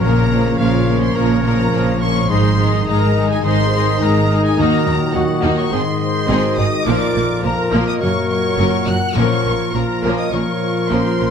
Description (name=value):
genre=cinematic, heroic adventure film score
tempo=105 BPM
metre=4/4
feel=straight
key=unclear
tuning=A4 = 440 Hz
part: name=warm symphonic violin section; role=melody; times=0.0-11.3 s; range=F5 to Gb6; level=-24 LUFS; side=left 3 dB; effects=none
part: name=clear clarinet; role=second line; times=0.0-11.3 s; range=F4 to Bb4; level=-27 LUFS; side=equal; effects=none
part: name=clear oboe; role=second line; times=0.0-11.3 s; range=Bb4 to Eb5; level=-28 LUFS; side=right 1 dB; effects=none
part: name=hollow flute section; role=second line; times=0.0-11.3 s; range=F4 to Gb5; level=-26 LUFS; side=left 1 dB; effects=none
part: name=warm symphonic violin section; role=second line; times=0.0-11.3 s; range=Bb3 to Bb4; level=-28 LUFS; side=left 3 dB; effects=none
part: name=warm symphonic viola section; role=accompaniment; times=0.0-11.3 s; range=F3 to Eb4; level=-22 LUFS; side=equal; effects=none
part: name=bright trombone section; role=sustained chords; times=0.0-11.3 s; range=F2 to Gb3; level=-24 LUFS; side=right 4 dB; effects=none
part: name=mellow French horn section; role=sustained chords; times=0.0-11.3 s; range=Gb3 to Bb4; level=-26 LUFS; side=left 4 dB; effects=none
part: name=concert harp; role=arpeggios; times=0.0-11.3 s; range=Gb2 to Eb5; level=-24 LUFS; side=left 9 dB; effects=none
part: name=rich studio double bass section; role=bass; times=0.0-11.3 s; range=Gb1 to Eb2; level=-22 LUFS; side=right 3 dB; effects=none
part: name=warm symphonic cello section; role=bass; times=0.0-11.3 s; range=Eb2 to Bb2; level=-22 LUFS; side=right 2 dB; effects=none
part: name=timpani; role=percussion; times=0.0-0.8, 9.2-10.0 s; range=Bb2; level=-25 LUFS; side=left 6 dB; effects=none
room=moderate scoring stage reverb, RT60 1.8 s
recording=close, detailed microphones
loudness=-14 LUFS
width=side -7 dB against mid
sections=0.0-11.3 A section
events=none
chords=0.0 Bbm; 2.3 Ab; 4.6 Ebm; 5.7 Ab; 6.9 Bb; 8.0 Gb; 9.2 Bbm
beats=| 0.02 0.59 1.16 1.73 | 2.29 2.87 3.44 4.01 | 4.58 5.15 5.72 6.29 | 6.87 7.44 8.01 8.59 | 9.16 9.74 10.32 10.90